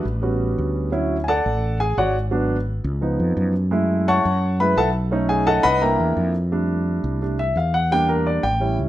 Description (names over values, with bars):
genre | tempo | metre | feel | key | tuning
Afro-Cuban jazz | 172 BPM | 4/4 | straight | unclear | A4 = 441 Hz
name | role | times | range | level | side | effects
warm grand piano | accompaniment | 0.0-8.9 s | F3 to Db6 | -20 LUFS | equal | none
mellow fretless electric bass | bass | 0.1-8.9 s | Ab1 to Gb2 | -22 LUFS | equal | none
room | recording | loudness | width
light reverb | none | -18 LUFS | side -14 dB against mid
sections
0.0-6.5 A section; 6.5-8.9 A section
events
grand piano solo 0.0-6.5, 6.5-8.9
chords
0.2 A13; 0.9 Dmaj7; 2.3 Abm7b5; 3.0 Db7; 3.7 Gbm7; 5.1 Cb9; 5.8 C7; 6.5 F6; 7.9 Em7b5